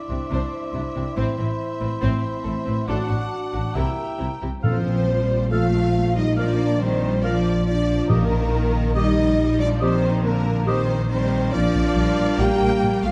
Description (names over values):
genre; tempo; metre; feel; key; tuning
cinematic, heroic adventure film score; 140 BPM; 4/4; straight; Bb major from 4.6 s; A4 = 440 Hz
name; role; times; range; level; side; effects
warm symphonic violin section; melody; 0.0-13.1 s; Bb4 to G5; -35 LUFS; equal; none
mellow clarinet; second line; 0.0-13.1 s; E4 to Bb4; -36 LUFS; equal; none
mellow cor anglais; second line; 0.0-13.1 s; C5 to F5; -35 LUFS; equal; none
mellow hollow flute section; second line; 0.0-13.1 s; Bb4 to C6; -35 LUFS; equal; none
mellow French horn section; sustained chords; 0.0-13.1 s; Bb3 to C5; -28 LUFS; equal; none
rich chamber violin section; second line; 0.1-13.1 s; E4 to G5; -37 LUFS; equal; none
rich symphonic viola section; accompaniment; 0.1-13.1 s; D3 to E4; -31 LUFS; equal; none
clear symphonic cello section; bass; 0.1-13.1 s; A2 to Bb3; -29 LUFS; equal; none
rich studio double bass section; bass; 0.1-13.1 s; A1 to C2; -26 LUFS; equal; none
timpani; percussion; 4.6-5.2, 8.1-8.7 s; Bb2; -26 LUFS; equal; none
room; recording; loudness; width
moderate scoring stage reverb, RT60 1.8 s; dark, warm production; -21 LUFS; mono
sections
0.0-4.6 A section; 4.6-13.1 B section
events
none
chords
0.0 Cadd9; 1.2 Amadd9; 2.9 D/A; 3.8 C7; 4.6 F/Bb; 6.4 Bb